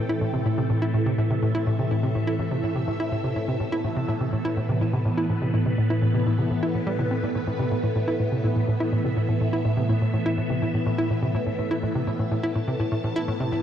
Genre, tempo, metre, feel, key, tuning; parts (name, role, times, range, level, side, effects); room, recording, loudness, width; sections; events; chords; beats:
ambient, sequencer-driven space music; 124 BPM; 4/4; straight; A minor; A4 = 441 Hz
phased string machine; sustained chords; 0.0-13.6 s; A2 to A5; -25 LUFS; equal; ensemble chorus, phaser
hollow square pluck; riff; 0.0-13.6 s; A2 to E4; -25 LUFS; equal; chorus, cassette tape, tape echo
wet lush hall reverb, RT60 2.6 s; -22 LUFS; side -10 dB against mid
0.0-13.6 A section
0.0 Am
0.22 0.70 1.18 | 1.67 2.15 2.63 3.12 | 3.60 4.09 4.57 5.05 | 5.54 6.02 6.51 6.99 | 7.47 7.96 8.44 8.93 | 9.41 9.89 10.38 10.86 | 11.35 11.83 12.31 12.80 | 13.28